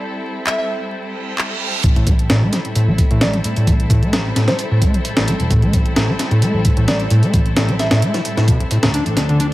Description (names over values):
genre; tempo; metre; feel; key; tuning
breakbeat, breaks; 131 BPM; 4/4; straight; A minor; A4 = 439 Hz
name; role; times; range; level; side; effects
rich studio string section; sustained chords; 0.0-9.5 s; F3 to A4; -25 LUFS; left 1 dB; vintage 12-bit sampler grit, sidechain pumping
glassy wavetable pluck; melody; 0.5-8.0 s; C5 to E5; -26 LUFS; right 1 dB; chorus, old record sound, digital delay
garage drum kit; drums; 0.5-9.5 s; handclaps, hi-hat; -27 LUFS; equal; none
reverse cymbal and riser; sound effects; 1.1-1.8, 9.2-9.5 s; none; -25 LUFS; right 6 dB; none
picked electric bass; bass; 1.8-9.5 s; E1 to A2; -21 LUFS; equal; low-pass filter
breakbeat sampler-style drum kit; drums; 1.8-9.5 s; hi-hat, kick drum, snare drum; -17 LUFS; equal; none
overdriven acid bass; riff; 2.0-9.5 s; A1 to D4; -17 LUFS; equal; distortion, cassette tape, digital delay
room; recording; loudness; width
light reverb; vinyl crackle; -14 LUFS; side -17 dB against mid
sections
0.0-1.8 A section; 1.8-9.5 B section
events
reverse cymbal 1.1-1.8; build-up 1.8-9.5; filter sweep on acid bass 1.8-9.5; filter sweep on synth pluck 1.8-9.5; drum fill 9.2-9.5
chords
0.0 Am7; 8.9 Dm7